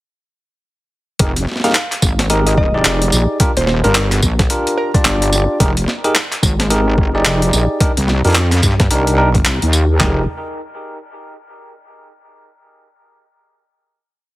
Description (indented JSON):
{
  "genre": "glitch hop",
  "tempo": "109 BPM",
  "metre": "4/4",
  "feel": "swing 61% on 16ths",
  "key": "F dorian",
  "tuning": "A4 = 442 Hz",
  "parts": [
    { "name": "bell-like tine electric piano", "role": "stabs", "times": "1.2-10.2 s", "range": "D4 to D5", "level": "-19 LUFS", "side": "equal", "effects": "sidechain pumping, dub echo" },
    { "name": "wobble bass", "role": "bass", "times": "1.2-10.3 s", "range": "Eb1 to G2", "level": "-15 LUFS", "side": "equal", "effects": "chorus, overdrive" },
    { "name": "boom bap sampler-style drum kit", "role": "drums", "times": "1.2-10.2 s", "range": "handclaps, kick drum, toms", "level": "-16 LUFS", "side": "equal", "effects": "overdrive" },
    { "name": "boom bap sampler-style drum kit", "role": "drums", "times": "1.2-9.9 s", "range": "handclaps, hi-hat, snare drum, tambourine", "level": "-17 LUFS", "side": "equal", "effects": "overdrive" },
    { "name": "woody wave-folded pluck", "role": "melody", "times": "1.6-5.2 s", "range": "Bb4 to F5", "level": "-23 LUFS", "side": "equal", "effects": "chorus, dub echo" }
  ],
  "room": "light reverb",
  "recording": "heavily compressed radio sound",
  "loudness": "-12 LUFS",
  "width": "side -18 dB against mid",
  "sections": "1.2-10.0 drop; 10.0-12.2 final chord",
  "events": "drop 1.2-10.0",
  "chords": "1.2 Fm11; 3.4 Ebmaj7 (rootless); 5.6 Fm11; 7.8 Cm7; 10.0 Fm11",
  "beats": "| 1.20 1.75 2.30 2.85 | 3.40 3.95 4.50 5.05 | 5.60 6.15 6.70 7.25 | 7.80 8.35 8.90 9.46 | 10.01"
}